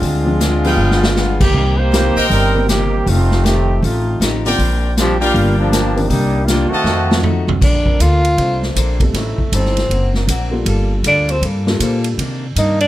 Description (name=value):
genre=jazz, big band swing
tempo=158 BPM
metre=4/4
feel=swing 64% on 8ths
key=Bb major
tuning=A4 = 440 Hz
part: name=brilliant trombone section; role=second line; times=0.0-7.2 s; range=Eb3 to C5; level=-18 LUFS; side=equal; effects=none
part: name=picked old ladder-braced acoustic guitar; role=accompaniment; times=0.0-12.8 s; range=G2 to C5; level=-26 LUFS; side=left 4 dB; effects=none
part: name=upright bass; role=bass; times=0.0-12.9 s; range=F1 to C3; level=-16 LUFS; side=equal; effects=none
part: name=swinging big-band drum kit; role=drums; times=0.0-12.9 s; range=crash cymbal, hi-hat, kick drum, ride cymbal, snare drum, toms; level=-20 LUFS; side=equal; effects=none
part: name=warm upright piano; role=accompaniment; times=0.3-12.2 s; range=D3 to A4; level=-22 LUFS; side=left 1 dB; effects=none
part: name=clear trumpet section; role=stabs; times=0.6-7.2 s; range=Ab4 to A5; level=-21 LUFS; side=equal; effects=none
part: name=mellow tenor saxophone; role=melody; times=7.6-12.9 s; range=A3 to F4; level=-17 LUFS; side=equal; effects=none
part: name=warm trombone section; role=sustained chords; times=7.9-12.0 s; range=F#3 to C5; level=-30 LUFS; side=equal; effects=none
room=little or no reverb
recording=none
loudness=-13 LUFS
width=side -14 dB against mid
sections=0.0-7.6 A section; 7.6-12.9 B section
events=trombone section solo 0.0-7.6; drum fill 0.8-1.2, 6.9-7.6; tenor saxophone solo 7.6-12.9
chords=0.0 Dm7b5; 0.8 G7b9; 1.5 Cm7; 3.1 F9; 4.6 Bb69; 5.3 Gm7; 6.1 Cm9; 6.9 F7b9; 7.6 Bbmaj9; 9.1 Am7b5; 9.9 D7b13; 10.7 Gm9; 12.2 Cm9